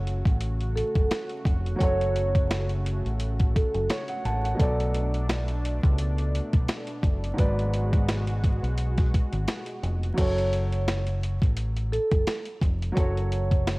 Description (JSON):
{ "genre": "hip hop, boom-bap hip-hop", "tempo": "86 BPM", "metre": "4/4", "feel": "swing 55% on 16ths", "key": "F# minor", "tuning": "A4 = 438 Hz", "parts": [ { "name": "warm grand piano", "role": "accompaniment", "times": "0.0-13.8 s", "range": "G#2 to A5", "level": "-33 LUFS", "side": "right 1 dB", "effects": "high-pass filter, low-pass filter" }, { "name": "lush unison pad", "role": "sustained chords", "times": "0.0-10.2 s", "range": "B2 to F#4", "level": "-36 LUFS", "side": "equal", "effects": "chorus, high-pass filter, low-pass filter" }, { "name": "deep dub fingered electric bass", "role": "bass", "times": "0.0-13.8 s", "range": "E#1 to C#2", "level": "-27 LUFS", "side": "equal", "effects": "transformer saturation" }, { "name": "boom bap sampler-style drum kit", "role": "drums", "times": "0.1-13.8 s", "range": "crash cymbal, hi-hat, kick drum, snare drum", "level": "-25 LUFS", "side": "equal", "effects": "cassette tape" }, { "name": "vibraphone with soft mallets", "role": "melody", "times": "0.8-4.2, 10.2-13.8 s", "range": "A4 to C#5", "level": "-30 LUFS", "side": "right 1 dB", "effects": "high-pass filter, low-pass filter, cassette tape" } ], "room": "digital ambience", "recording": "home recording on cassette, vinyl crackle", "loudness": "-23 LUFS", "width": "side -23 dB against mid", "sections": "0.0-10.2 A section; 10.2-13.8 A section", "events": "none", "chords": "0.0 F#m; 4.6 Bm7; 7.4 G#m7b5; 10.2 F#m" }